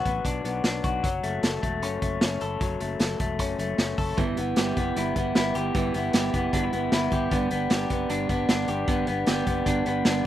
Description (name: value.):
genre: jangly indie pop.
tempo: 153 BPM.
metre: 4/4.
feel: straight.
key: unclear.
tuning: A4 = 440 Hz.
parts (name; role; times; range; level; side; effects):
electric guitar through a small old amp; arpeggios; 0.0-10.3 s; E3 to A4; -28 LUFS; left 5 dB; none.
fingered electric bass; bass; 0.1-10.2 s; E1 to B1; -33 LUFS; equal; none.
raw garage drum kit; drums; 0.1-10.1 s; hi-hat, kick drum, snare drum; -27 LUFS; equal; none.
electric guitar through a small old amp; accompaniment; 4.2-10.3 s; G3 to G4; -28 LUFS; right 7 dB; slapback echo.
room: little or no reverb.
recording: recorded outdoors, with no room sound.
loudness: -23 LUFS.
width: side -12 dB against mid.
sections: 0.0-10.3 A section.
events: none.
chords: 0.0 Bm; 1.0 F#m; 4.2 Em; 7.3 G.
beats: 0.25 0.64 | 1.04 1.43 1.82 2.22 | 2.61 3.00 3.40 3.79 | 4.18 4.57 4.97 5.36 | 5.75 6.14 6.53 6.93 | 7.32 7.71 8.10 8.49 | 8.88 9.28 9.67 10.06.